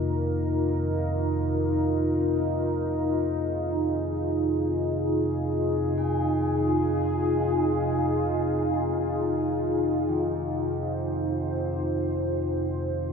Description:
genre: dark ambient drone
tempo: free time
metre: none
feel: none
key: F minor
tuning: A4 = 443 Hz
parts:
  - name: dark analog pad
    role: sustained chords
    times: 0.0-13.1 s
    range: Eb4 to C5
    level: -25 LUFS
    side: equal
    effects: chorus, phaser
  - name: deep rumbling drone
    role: drone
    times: 0.0-13.1 s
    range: F2 to C3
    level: -30 LUFS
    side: equal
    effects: built-in reverb, phaser, wide subtle chorus
  - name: bronze singing bowl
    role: arpeggios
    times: 6.0-13.1 s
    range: Eb3 to Eb4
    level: -38 LUFS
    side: equal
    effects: tape echo
room: wet huge ambient reverb, RT60 8.2 s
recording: none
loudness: -24 LUFS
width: side -6 dB against mid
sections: 0.0-13.1 A section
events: none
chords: 0.0 Fm

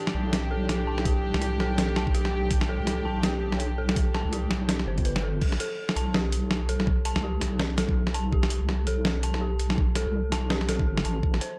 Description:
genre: half-time drum and bass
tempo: 165 BPM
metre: 4/4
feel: swing 59% on 16ths, half-time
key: unclear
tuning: A4 = 440 Hz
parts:
  - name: dark studio string section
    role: sustained chords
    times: 0.0-5.4 s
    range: A2 to G4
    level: -36 LUFS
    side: equal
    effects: sidechain pumping
  - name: dark detuned synth bell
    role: arpeggios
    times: 0.0-11.6 s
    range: G4 to A5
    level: -36 LUFS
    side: equal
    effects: chorus, analog delay
  - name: deep soft wobble bass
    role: bass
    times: 0.1-11.4 s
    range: G1 to C2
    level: -30 LUFS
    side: equal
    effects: chorus, tube saturation
  - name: boom bap sampler-style drum kit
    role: drums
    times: 0.1-11.5 s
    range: crash cymbal, hi-hat, snare drum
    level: -32 LUFS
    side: equal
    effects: none
  - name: electronic kick drum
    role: drums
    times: 1.1-11.3 s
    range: none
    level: -27 LUFS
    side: equal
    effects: none
room: digital ambience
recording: dry, gritty hardware recording, lossy compression artefacts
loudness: -26 LUFS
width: mono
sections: 0.0-5.4 A section; 5.4-11.6 A section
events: drop 0.0-5.4, 5.4-11.6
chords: 0.0 A5; 5.4 Gadd9

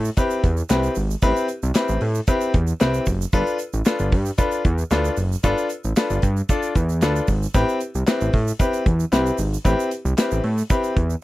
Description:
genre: early-eighties boogie funk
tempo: 114 BPM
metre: 4/4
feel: straight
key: A minor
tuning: A4 = 439 Hz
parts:
  - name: fat analog bass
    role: bass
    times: 0.0-11.2 s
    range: F#1 to A2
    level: -22 LUFS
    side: equal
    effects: none
  - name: egg shaker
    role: percussion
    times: 0.0-11.2 s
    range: none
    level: -37 LUFS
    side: right 27 dB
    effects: none
  - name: clear grand piano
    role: accompaniment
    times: 0.2-10.9 s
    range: C4 to D5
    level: -22 LUFS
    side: left 2 dB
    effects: none
  - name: modern studio drum kit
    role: drums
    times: 0.2-11.1 s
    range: handclaps, hi-hat, kick drum, snare drum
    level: -20 LUFS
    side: equal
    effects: none
room: little or no reverb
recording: dry, close 1970s-style studio recording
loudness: -18 LUFS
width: side -17 dB against mid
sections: 0.0-11.2 A section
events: none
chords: 0.0 Am9; 3.3 G9; 7.5 Am9

